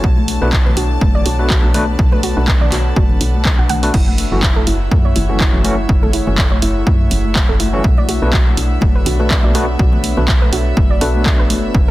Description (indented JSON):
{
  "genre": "deep house",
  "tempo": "123 BPM",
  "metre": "4/4",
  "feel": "swing 55% on 16ths",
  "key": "unclear",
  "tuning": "A4 = 440 Hz",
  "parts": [
    { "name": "warbly tape-like pad", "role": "sustained chords", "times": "0.2-11.9 s", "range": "A3 to C#5", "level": "-28 LUFS", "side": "equal", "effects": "chorus, built-in reverb, sidechain pumping" },
    { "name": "soft round pluck", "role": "arpeggios", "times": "0.0-11.9 s", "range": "E4 to F#5", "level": "-26 LUFS", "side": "right 4 dB", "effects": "chorus, sidechain pumping, digital delay" },
    { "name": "overdriven tine electric piano", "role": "stabs", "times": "0.0-11.7 s", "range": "E3 to B4", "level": "-22 LUFS", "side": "equal", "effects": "fast tremolo, sidechain pumping, low-pass filter, digital delay" },
    { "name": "woody FM bass", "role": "bass", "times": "0.0-11.9 s", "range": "F#1 to F#2", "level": "-18 LUFS", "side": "equal", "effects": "sidechain pumping" },
    { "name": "electronic kick drum", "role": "drums", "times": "0.0-11.9 s", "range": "none", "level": "-15 LUFS", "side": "equal", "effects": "none" },
    { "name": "airy breathy pad", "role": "texture", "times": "0.0-11.9 s", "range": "A3 to F#5", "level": "-27 LUFS", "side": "equal", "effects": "chorus, sidechain pumping" },
    { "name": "clear studio violin section", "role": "texture", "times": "0.0-11.9 s", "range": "E5 to A5", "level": "-30 LUFS", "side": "left 2 dB", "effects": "sidechain pumping" },
    { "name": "congas", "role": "percussion", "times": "0.2-11.9 s", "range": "none", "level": "-25 LUFS", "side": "left 4 dB", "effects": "none" },
    { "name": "punchy analog drum machine", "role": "drums", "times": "0.3-11.6 s", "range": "crash cymbal, handclaps, hi-hat", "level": "-21 LUFS", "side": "right 1 dB", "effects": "none" }
  ],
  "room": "little or no reverb",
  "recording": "dense, heavily limited modern master",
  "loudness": "-12 LUFS",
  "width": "side -17 dB against mid",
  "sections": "0.0-3.9 A section; 3.9-11.9 A section",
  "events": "filter sweep on tine electric piano 3.9-11.9",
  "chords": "0.0 Bm7; 3.9 F#m7; 7.8 Bm7"
}